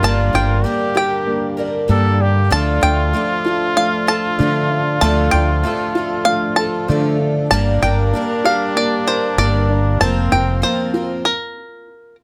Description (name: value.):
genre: folk.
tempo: 96 BPM.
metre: 4/4.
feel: straight.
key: unclear.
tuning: A4 = 440 Hz.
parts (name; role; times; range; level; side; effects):
bluegrass banjo; melody; 0.0-12.2 s; Bb4 to A5; -21 LUFS; equal; none.
trombone with straight mute; second line; 0.0-11.2 s; C4 to A4; -24 LUFS; equal; none.
picked twelve-string acoustic guitar; accompaniment; 0.0-11.3 s; G2 to Bb4; -28 LUFS; equal; none.
warm grand piano; accompaniment; 0.0-11.3 s; F1 to D5; -29 LUFS; equal; none.
pedal harmonium; sustained chords; 0.0-11.2 s; D3 to Bb4; -31 LUFS; equal; none.
dark upright piano; arpeggios; 0.0-11.3 s; A3 to D5; -25 LUFS; equal; analog delay.
mellow fretless electric bass; bass; 0.0-10.6 s; F1 to D3; -19 LUFS; equal; ensemble chorus.
room: light reverb.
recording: none.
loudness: -17 LUFS.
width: mono.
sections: 0.0-12.2 A section.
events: stop 11.3-12.2.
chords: 0.0 Gm; 2.5 Dm; 7.5 Gm; 10.0 Fsus4.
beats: | 0.03 0.65 1.28 1.90 | 2.52 3.14 3.77 4.39 | 5.01 5.64 6.26 6.89 | 7.51 8.14 8.76 9.38 | 10.01 10.63 11.26 11.88.